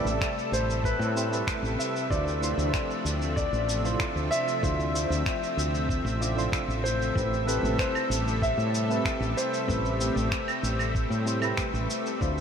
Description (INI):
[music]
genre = sunset chillout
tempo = 95 BPM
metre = 4/4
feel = straight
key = A minor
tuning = A4 = 440 Hz
[part]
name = warm grand piano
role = melody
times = 0.0-10.3 s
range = B4 to E5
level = -32 LUFS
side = left 1 dB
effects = wide subtle chorus, analog delay
[part]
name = soft electric-piano-like synth keys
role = accompaniment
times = 0.0-12.4 s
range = A3 to D5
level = -33 LUFS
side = moving between left 3 dB and right 4 dB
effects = chorus, tremolo, auto-pan, low-pass filter, analog delay
[part]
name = lush unison pad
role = sustained chords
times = 0.0-12.4 s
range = C3 to E5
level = -32 LUFS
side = equal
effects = chorus
[part]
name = woody fretless electric bass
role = bass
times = 0.0-12.4 s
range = A1 to A2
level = -29 LUFS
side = equal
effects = none
[part]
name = electronic cabasa, finger snaps and claves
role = drums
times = 0.1-12.4 s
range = none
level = -34 LUFS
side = right 1 dB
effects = none
[part]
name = electronic kick drum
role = drums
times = 0.2-12.3 s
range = none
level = -32 LUFS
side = equal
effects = none
[sound]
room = wet huge ambient reverb, RT60 7.9 s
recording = dreamy mix soaked in reverb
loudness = -25 LUFS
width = side -7 dB against mid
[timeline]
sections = 0.0-12.4 A section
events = filter sweep on synth keys 0.0-12.4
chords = 0.0 Am9; 2.1 Dm9; 7.2 Am9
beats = 0.21 0.84 1.47 | 2.11 2.74 3.37 4.00 | 4.63 5.26 5.89 6.53 | 7.16 7.79 8.42 9.05 | 9.69 10.32 10.95 11.58 | 12.21